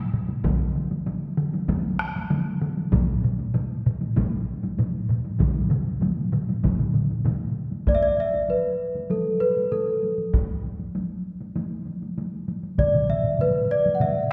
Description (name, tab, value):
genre	japanese traditional, taiko drum ensemble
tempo	97 BPM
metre	4/4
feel	straight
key	E suspended pentatonic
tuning	A4 = 440 Hz
part	taiko ensemble	percussion	0.1-7.4, 12.8-14.1 s	none	-29 LUFS	equal	none
part	taiko ensemble	percussion	0.3-14.2 s	none	-31 LUFS	equal	none
part	solo taiko drums	percussion	0.4-7.4, 12.8-14.2 s	none	-30 LUFS	equal	none
part	taiko ensemble	percussion	0.4-12.9 s	none	-29 LUFS	equal	none
part	large celesta	melody	7.9-14.3 s	A4 to F#5	-24 LUFS	equal	none
room	wet scoring stage reverb, RT60 1.7 s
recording	heard from further back in the room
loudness	-25 LUFS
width	mono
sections	0.0-7.9 A section; 7.9-14.3 B section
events	none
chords	none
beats	| 0.44 1.06 1.68 2.31 | 2.92 3.54 4.17 4.78 | 5.40 6.02 6.64 7.26 | 7.87 8.49 9.10 9.72 | 10.33 10.95 11.56 12.18 | 12.79 13.40 14.01